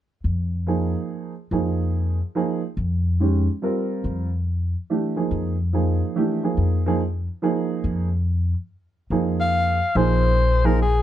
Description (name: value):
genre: modal jazz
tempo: 142 BPM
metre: 3/4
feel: swing 64% on 8ths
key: unclear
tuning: A4 = 440 Hz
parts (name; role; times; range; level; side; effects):
- upright bass; bass; 0.2-11.0 s; Bb1 to F2; -21 LUFS; left 1 dB; none
- warm upright piano; accompaniment; 0.7-10.8 s; Eb3 to Bb4; -23 LUFS; right 4 dB; none
- breathy soprano saxophone; melody; 9.4-11.0 s; Ab4 to F5; -21 LUFS; left 2 dB; plate reverb
room: little or no reverb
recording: dark, warm production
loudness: -20 LUFS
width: side -12 dB against mid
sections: 0.0-10.0 A section; 10.0-11.0 B section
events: none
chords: 0.0 Bb7sus2; 4.9 Fm11; 10.0 Bb7sus2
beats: 0.25 0.67 | 1.09 1.51 1.94 | 2.36 2.78 3.20 | 3.62 4.05 4.47 | 4.89 5.31 5.74 | 6.16 6.58 7.00 | 7.42 7.85 8.27 | 8.69 9.11 9.53 | 9.96 10.38 10.80